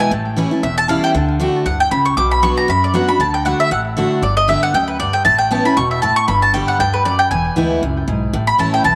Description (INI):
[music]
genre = bluegrass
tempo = 233 BPM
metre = 4/4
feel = swing 55% on 8ths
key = D major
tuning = A4 = 440 Hz
[part]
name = mandolin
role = melody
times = 0.0-9.0 s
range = B4 to D6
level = -18 LUFS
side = equal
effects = tape echo
[part]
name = picked steel-string acoustic guitar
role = accompaniment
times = 0.0-9.0 s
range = E2 to G4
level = -21 LUFS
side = equal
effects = none
[part]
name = upright bass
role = bass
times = 0.1-9.0 s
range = E1 to F#2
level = -25 LUFS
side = equal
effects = none
[sound]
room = moderate spring reverb, RT60 2.1 s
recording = none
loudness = -16 LUFS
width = mono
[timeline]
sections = 0.0-2.2 A section; 2.2-9.0 A section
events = mandolin solo 0.0-9.0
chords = 0.1 A7; 1.1 D; 2.2 Bm; 3.2 D; 4.2 G; 5.3 Aadd9; 6.3 G; 7.3 E; 8.3 A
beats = | 0.11 0.37 0.62 0.88 | 1.14 1.40 1.66 1.91 | 2.17 2.43 2.69 2.94 | 3.20 3.46 3.71 3.97 | 4.23 4.49 4.74 5.00 | 5.26 5.51 5.77 6.03 | 6.28 6.54 6.80 7.05 | 7.31 7.57 7.83 8.08 | 8.34 8.60 8.86